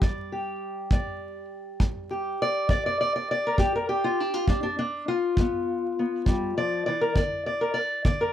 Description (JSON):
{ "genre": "acoustic country blues, solo or duo", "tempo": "67 BPM (dotted quarters)", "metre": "12/8", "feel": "straight", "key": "G mixolydian", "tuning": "A4 = 440 Hz", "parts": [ { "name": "fingerpicked steel-string acoustic guitar", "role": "melody", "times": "0.0-8.3 s", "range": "D3 to D5", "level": "-25 LUFS", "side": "left 1 dB", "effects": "none" }, { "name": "kick drum", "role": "drums", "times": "0.0-8.2 s", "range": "none", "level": "-25 LUFS", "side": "equal", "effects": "none" } ], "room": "light reverb", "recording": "close, detailed microphones, vinyl crackle", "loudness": "-24 LUFS", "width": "side -10 dB against mid", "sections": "0.0-8.3 A section", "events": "none", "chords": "0.0 G7(no3); 7.2 N.C." }